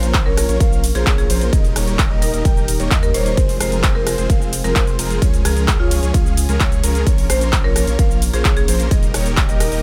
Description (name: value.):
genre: EDM, festival progressive house.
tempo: 130 BPM.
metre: 4/4.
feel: straight.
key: unclear.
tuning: A4 = 440 Hz.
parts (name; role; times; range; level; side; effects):
marimba with medium hard mallets; melody; 0.0-9.8 s; F4 to C5; -28 LUFS; equal; delay.
lush unison pad; sustained chords; 0.0-9.8 s; Db3 to Bb4; -32 LUFS; equal; chorus, sidechain pumping.
dark concert grand piano; arpeggios; 0.0-9.8 s; Bb4 to G5; -31 LUFS; equal; vintage 12-bit sampler grit, sidechain pumping, delay.
big supersaw lead; riff; 0.0-9.8 s; F3 to G5; -28 LUFS; equal; sidechain pumping, delay.
saturated sub bass; bass; 0.0-9.8 s; Eb1 to Eb2; -23 LUFS; equal; sidechain pumping.
big-room dance drum kit; drums; 0.0-9.8 s; cabasa, handclaps, hi-hat, ride cymbal, rim click; -25 LUFS; equal; none.
electronic kick drum; drums; 0.1-9.5 s; none; -19 LUFS; equal; none.
room: digital ambience.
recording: none.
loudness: -16 LUFS.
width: mono.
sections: 0.0-9.8 A section.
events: none.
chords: 0.0 Bbm; 1.5 Eb; 3.4 Fm; 5.2 Db; 7.1 Bbm; 8.9 Eb.